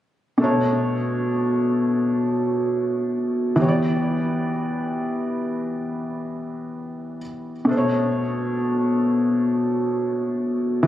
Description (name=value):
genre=R&B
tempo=free time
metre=none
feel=none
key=B minor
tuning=A4 = 436 Hz
part: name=felt-muted upright piano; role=solo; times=0.4-10.9 s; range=B2 to D5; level=-20 LUFS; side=equal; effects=digital delay
room=light reverb, studio reverb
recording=recorded on a phone in the room, club reverb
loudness=-20 LUFS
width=side -12 dB against mid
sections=0.4-10.9 A section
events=none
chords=0.4 Bm9; 3.6 Em7; 7.7 Bm9